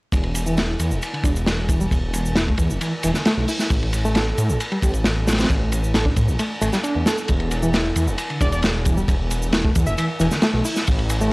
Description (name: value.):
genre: breakbeat, breaks.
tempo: 134 BPM.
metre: 4/4.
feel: straight.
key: E minor.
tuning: A4 = 435 Hz.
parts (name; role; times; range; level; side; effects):
detuned saw bass; bass; 0.1-11.3 s; E1 to A2; -22 LUFS; equal; tube saturation.
crunchy breakbeat drum kit; drums; 0.1-11.2 s; hi-hat, kick drum, ride cymbal, snare drum; -21 LUFS; equal; none.
shaker; drums; 0.1-11.3 s; none; -35 LUFS; right 2 dB; none.
barky reed electric piano; riff; 0.5-11.3 s; D3 to A4; -25 LUFS; equal; overdrive, fast tremolo, low-pass filter, tape echo.
plucky unison lead; melody; 8.4-10.1 s; D5 to E5; -31 LUFS; equal; small speaker sound, cassette tape, tape echo.
room: studio ambience.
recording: dry, gritty hardware recording, vinyl crackle.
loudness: -18 LUFS.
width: side -24 dB against mid.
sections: 0.1-11.3 A section.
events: filter sweep on reed electric piano 0.1-11.3.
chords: none.